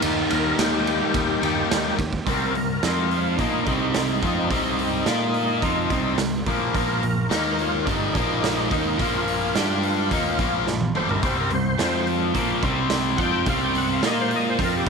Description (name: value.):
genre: classic rock.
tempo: 107 BPM.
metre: 4/4.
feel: straight.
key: C minor.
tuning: A4 = 440 Hz.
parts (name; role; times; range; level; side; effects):
string machine, cellos; sustained chords; 0.0-2.2 s; Bb3 to G4; -34 LUFS; left 1 dB; none.
distorted electric guitar; riff; 0.0-14.9 s; G2 to Bb4; -25 LUFS; left 14 dB; distortion.
overdriven electric guitar; riff; 0.0-14.9 s; G2 to Bb4; -27 LUFS; right 12 dB; phaser.
growling picked electric bass; bass; 0.0-14.9 s; G1 to Bb2; -29 LUFS; equal; overdrive.
raw garage drum kit; drums; 0.0-14.9 s; hi-hat, kick drum, ride cymbal, snare drum, toms; -27 LUFS; right 4 dB; none.
overdriven tonewheel organ; melody; 0.3-14.9 s; D4 to G5; -28 LUFS; equal; slow rotary speaker, chorus vibrato, slapback echo.
room: light reverb.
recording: 1960s-style stereo with parts hard left and right.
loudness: -20 LUFS.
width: side -5 dB against mid.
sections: 0.0-2.3 A section; 2.3-14.9 B section.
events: tonewheel organ solo 2.3-14.9; drum fill 10.7-11.2.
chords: 0.0 Eb; 2.3 C5; 2.8 F5; 3.4 Cm; 5.1 Bb5; 5.6 Cm; 6.8 Bb5; 7.3 Eb5; 7.9 Bb5; 9.6 G5; 10.1 Bb5; 11.2 C5; 11.8 F5; 12.4 C5; 14.0 Bb5.